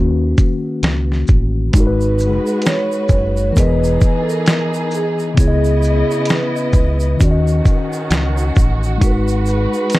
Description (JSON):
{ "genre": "lo-fi hip hop", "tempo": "66 BPM", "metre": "4/4", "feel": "swing 59% on 16ths", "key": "G# minor", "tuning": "A4 = 440 Hz", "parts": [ { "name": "mellow tine electric piano", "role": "accompaniment", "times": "0.0-10.0 s", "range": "C#3 to D#5", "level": "-20 LUFS", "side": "left 2 dB", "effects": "medium stereo tremolo, cassette tape, low-pass filter" }, { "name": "deep dub fingered electric bass", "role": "bass", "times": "0.0-9.7 s", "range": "E1 to D#2", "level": "-17 LUFS", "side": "equal", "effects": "none" }, { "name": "dusty soul sampler-style drum kit", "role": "drums", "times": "0.4-10.0 s", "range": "hi-hat, kick drum, shaker, snare drum", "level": "-14 LUFS", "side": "equal", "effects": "none" }, { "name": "warm studio string section", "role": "sustained chords", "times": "1.7-10.0 s", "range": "C#3 to D#5", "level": "-25 LUFS", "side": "right 1 dB", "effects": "low-pass filter" }, { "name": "egg shaker", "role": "percussion", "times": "1.8-10.0 s", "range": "none", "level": "-36 LUFS", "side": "right 6 dB", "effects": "none" }, { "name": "vibraphone with medium mallets", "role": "melody", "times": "2.7-10.0 s", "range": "G#4 to C#5", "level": "-22 LUFS", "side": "right 2 dB", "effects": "low-pass filter, analog delay" } ], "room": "light reverb", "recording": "none", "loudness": "-13 LUFS", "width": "side -18 dB against mid", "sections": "0.0-10.0 A section", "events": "none", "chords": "0.0 D#m7; 1.7 G#m7; 3.6 Emaj7; 5.4 C#m9; 7.2 D#m7; 9.0 G#m7", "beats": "0.83 | 1.74 2.65 3.56 4.47 | 5.38 6.29 7.20 8.10 | 9.01 9.92" }